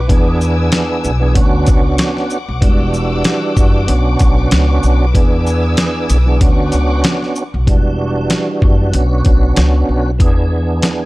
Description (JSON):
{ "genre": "hip hop, boom-bap hip-hop", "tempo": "95 BPM", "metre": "4/4", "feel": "swing 56% on 16ths", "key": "unclear", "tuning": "A4 = 441 Hz", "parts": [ { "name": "warm studio string section", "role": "sustained chords", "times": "0.0-7.7 s", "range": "G3 to E6", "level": "-25 LUFS", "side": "left 4 dB", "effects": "high-pass filter, low-pass filter" }, { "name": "upright bass", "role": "bass", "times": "0.0-10.8 s", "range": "E1 to E2", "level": "-15 LUFS", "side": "equal", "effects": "none" }, { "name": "tonewheel organ", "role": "accompaniment", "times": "0.1-11.1 s", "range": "E3 to G#4", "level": "-18 LUFS", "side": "right 2 dB", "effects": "overdrive, chorus vibrato, slow rotary speaker, cassette tape, high-pass filter, low-pass filter" }, { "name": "dusty soul sampler-style drum kit", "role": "drums", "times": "0.1-11.0 s", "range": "hi-hat, kick drum, shaker, snare drum", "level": "-13 LUFS", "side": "equal", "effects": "none" } ], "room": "digital ambience", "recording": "none", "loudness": "-11 LUFS", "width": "side -20 dB against mid", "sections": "0.0-7.7 A section; 7.7-11.1 B section", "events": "none", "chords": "0.1 E7; 1.4 Bmadd9; 2.6 Em9; 3.9 Bmadd9; 5.1 E7; 6.4 Bmadd9; 7.7 Em9; 8.9 Bmadd9; 10.2 E7" }